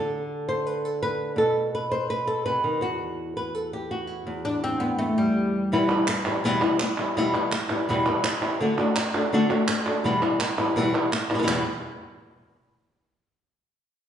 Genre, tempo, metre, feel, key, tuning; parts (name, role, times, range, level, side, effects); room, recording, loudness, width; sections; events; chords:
flamenco; 166 BPM; 4/4; straight; E minor; A4 = 439 Hz
flamenco guitar; melody; 0.0-11.6 s; E2 to C5; -24 LUFS; equal
oud; second line; 4.4-5.7 s; G3 to D4; -25 LUFS; left 1 dB
palmas hand claps; percussion; 5.9-11.6 s; -28 LUFS; right 3 dB
wet recital hall reverb, RT60 1.5 s; recorded in a church or concert hall, nothing above 10.9 kHz; -22 LUFS; side -9 dB against mid
0.0-5.7 A section; 5.7-11.5 B section; 11.5-12.9 C section
0.0 N.C.; 1.4 B7(no3); 2.8 Emadd9; 5.7 Em; 8.6 D; 10.0 Em; 11.5 N.C.